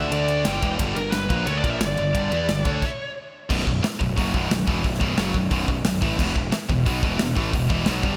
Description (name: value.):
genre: heavy metal.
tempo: 178 BPM.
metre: 4/4.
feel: straight.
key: B minor.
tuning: A4 = 440 Hz.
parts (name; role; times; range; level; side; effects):
high-gain lead guitar; melody; 0.0-3.1 s; A#4 to G5; -29 LUFS; equal; distortion.
heavy high-gain guitar; riff; 0.0-8.2 s; B1 to E4; -28 LUFS; equal; distortion.
fuzz picked electric bass; bass; 0.0-8.2 s; B0 to E2; -29 LUFS; equal; overdrive.
modern studio drum kit; drums; 0.1-8.1 s; crash cymbal, hi-hat, kick drum, ride cymbal, snare drum; -28 LUFS; equal; none.
room: moderate lush hall reverb, RT60 2.3 s.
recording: bright 1980s-style digital production.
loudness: -23 LUFS.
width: mono.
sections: 0.0-3.5 A section; 3.5-8.2 B section.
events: stop 2.8-3.5.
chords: 0.1 D5; 0.5 G5; 2.8 N.C.; 3.5 B5; 6.2 E5.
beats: 0.12 0.46 | 0.80 1.14 1.47 1.81 | 2.15 2.49 2.82 3.16 | 3.50 3.83 4.17 4.51 | 4.84 5.18 5.52 5.85 | 6.19 6.53 6.86 7.20 | 7.53 7.87.